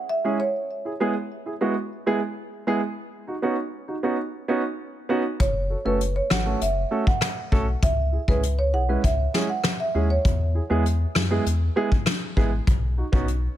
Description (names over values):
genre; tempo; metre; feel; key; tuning
dancehall; 99 BPM; 4/4; straight; unclear; A4 = 440 Hz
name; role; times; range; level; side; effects
marimba with medium mallets; melody; 0.1-0.5, 5.4-10.2 s; B4 to F#5; -27 LUFS; right 2 dB; ping-pong delay
warm concert grand piano; accompaniment; 0.2-13.3 s; G#3 to B4; -26 LUFS; right 2 dB; none
warm sub bass; bass; 5.4-13.5 s; F#1 to F#2; -24 LUFS; left 1 dB; none
soft brush drum kit; drums; 5.4-13.4 s; hi-hat, kick drum, rim click, snare drum; -23 LUFS; left 1 dB; none
room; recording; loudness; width
little or no reverb; none; -21 LUFS; side -12 dB against mid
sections
0.0-13.6 A section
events
grand piano fill 13.3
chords
0.0 C#m; 0.6 E; 3.0 Badd9; 5.4 F#m; 7.8 C#m; 10.2 E; 12.7 Badd9